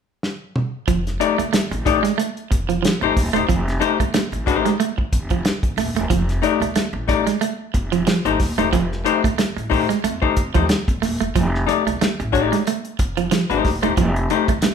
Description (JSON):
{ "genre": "funk", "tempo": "92 BPM", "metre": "4/4", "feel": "swing 56% on 16ths", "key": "F mixolydian", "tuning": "A4 = 438 Hz", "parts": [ { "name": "warm soul drum kit", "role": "drums", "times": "0.2-14.7 s", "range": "hi-hat, kick drum, snare drum, toms", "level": "-22 LUFS", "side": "equal", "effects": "none" }, { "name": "electric guitar at the edge of break-up", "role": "riff", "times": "0.9-14.7 s", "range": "F3 to A3", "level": "-22 LUFS", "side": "right 8 dB", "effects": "none" }, { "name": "upright bass", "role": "bass", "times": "0.9-14.7 s", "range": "Eb1 to F2", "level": "-26 LUFS", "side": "equal", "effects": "none" }, { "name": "vintage hollow-body jazz guitar", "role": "accompaniment", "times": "1.2-14.5 s", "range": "A3 to D5", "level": "-20 LUFS", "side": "left 8 dB", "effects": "none" } ], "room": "moderate large studio reverb, RT60 0.8 s", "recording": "band playing live in one room", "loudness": "-17 LUFS", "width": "side -7 dB against mid", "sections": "0.9-14.7 A section", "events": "drum fill 0.2-0.9", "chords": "0.0 N.C.; 0.9 F9" }